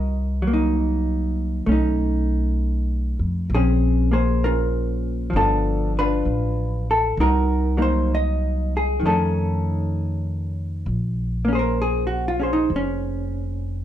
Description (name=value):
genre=jazz ballad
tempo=65 BPM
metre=4/4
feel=swing 66% on 8ths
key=Bb minor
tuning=A4 = 443 Hz
part: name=vintage hollow-body jazz guitar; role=accompaniment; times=0.0-13.8 s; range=Eb3 to Eb5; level=-22 LUFS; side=equal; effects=none
part: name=upright bass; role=bass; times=0.0-13.8 s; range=F1 to F2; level=-22 LUFS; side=equal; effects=none
room=light reverb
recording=dark, warm production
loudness=-19 LUFS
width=side -11 dB against mid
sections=0.0-10.9 A section; 10.9-13.8 B section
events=none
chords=0.0 Cm7b5; 1.7 B9; 3.5 Bbm9; 5.3 G7; 7.2 Cm7b5; 9.0 Faug7; 10.9 Bbm9